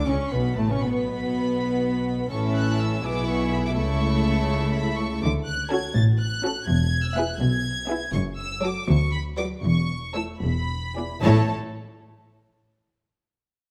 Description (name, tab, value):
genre	quick classical-period movement for symphony orchestra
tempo	81 BPM (dotted quarters)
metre	6/8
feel	rubato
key	A major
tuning	A4 = 440 Hz
part	warm studio violin section	melody	0.0-11.5 s	A5 to A6	-34 LUFS	equal	none
part	warm studio viola section	accompaniment	0.0-11.5 s	F#3 to F#4	-31 LUFS	equal	none
part	warm studio cello section	bass	0.0-11.5 s	D2 to D3	-29 LUFS	equal	none
part	warm studio double bass section	bass	0.0-11.5 s	E1 to D2	-28 LUFS	equal	none
part	warm studio violin section	second line	0.1-11.5 s	A3 to A5	-34 LUFS	equal	none
room	moderate recital hall reverb, RT60 1.5 s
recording	none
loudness	-24 LUFS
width	mono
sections	0.0-11.2 A section; 11.2-12.8 B section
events	none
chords	0.1 Aadd9; 0.8 N.C.; 2.3 A; 3.0 E/B; 3.8 A/C#; 5.2 Dmaj7; 6.7 E; 8.1 F#m; 8.9 Bm/D; 9.6 A/E; 10.4 E7; 11.2 A5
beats	0.07 | 0.82 1.57 | 2.31 3.05 | 3.78 4.50 | 5.23 5.95 | 6.68 7.40 | 8.14 8.88 | 9.63 10.41 | 11.23